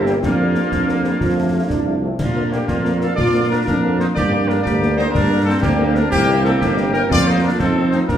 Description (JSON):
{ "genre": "military-style march for wind band", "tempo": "122 BPM (dotted quarters)", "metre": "6/8", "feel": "straight", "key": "Bb major", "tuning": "A4 = 444 Hz", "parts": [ { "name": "warm trumpet section", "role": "melody", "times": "0.0-8.2 s", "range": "F4 to G5", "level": "-23 LUFS", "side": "left 1 dB", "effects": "none" }, { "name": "mellow euphonium", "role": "second line", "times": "0.0-8.2 s", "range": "Bb3 to G4", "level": "-25 LUFS", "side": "right 2 dB", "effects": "none" }, { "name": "warm woodwind section", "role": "second line", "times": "0.0-8.2 s", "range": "Bb3 to Bb4", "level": "-25 LUFS", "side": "left 1 dB", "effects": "none" }, { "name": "mellow trombone section", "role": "sustained chords", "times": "0.0-8.2 s", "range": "F3 to F4", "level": "-26 LUFS", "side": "right 3 dB", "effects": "none" }, { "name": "mellow tuba", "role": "bass", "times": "0.0-8.2 s", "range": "G1 to Bb2", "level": "-19 LUFS", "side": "right 2 dB", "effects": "none" }, { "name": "warm French horn section", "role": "accompaniment", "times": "0.1-8.0 s", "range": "C3 to C4", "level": "-26 LUFS", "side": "left 3 dB", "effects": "none" }, { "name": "concert snare drum, concert bass drum and clash cymbals", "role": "drums", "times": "0.1-8.2 s", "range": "none", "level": "-24 LUFS", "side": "left 1 dB", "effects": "none" } ], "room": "wet recital hall reverb, RT60 1.7 s", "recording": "recorded in a church or concert hall", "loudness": "-15 LUFS", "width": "side -10 dB against mid", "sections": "0.0-8.2 A section", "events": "none", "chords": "0.2 Bb/F; 1.2 F; 2.2 Bb; 4.2 Gm; 6.1 C7; 7.1 Bb/F; 7.6 F7" }